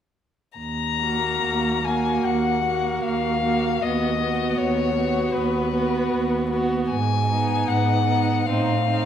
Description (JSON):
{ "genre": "classical, slow romantic movement for string quartet", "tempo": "76 BPM", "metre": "4/4", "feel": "rubato", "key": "Eb minor", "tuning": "A4 = 442 Hz", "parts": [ { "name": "warm violin", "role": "melody", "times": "0.6-9.1 s", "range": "B4 to Bb5", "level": "-25 LUFS", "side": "left 8 dB", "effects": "none" }, { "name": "rich cello", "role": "bass", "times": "0.6-9.1 s", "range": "D#2 to A2", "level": "-25 LUFS", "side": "right 3 dB", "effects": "none" }, { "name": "dark violin", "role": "second line", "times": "1.0-9.1 s", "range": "Eb4 to Gb4", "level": "-27 LUFS", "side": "left 1 dB", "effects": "none" }, { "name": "warm viola", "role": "accompaniment", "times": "1.0-9.1 s", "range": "Bb3 to C4", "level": "-26 LUFS", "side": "right 4 dB", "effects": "none" } ], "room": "wet scoring stage reverb, RT60 1.8 s", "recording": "none", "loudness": "-20 LUFS", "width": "side -9 dB against mid", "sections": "0.6-9.1 A section", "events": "none", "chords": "0.6 Ebm; 3.8 B/D#; 6.9 Abm; 8.5 F7/A" }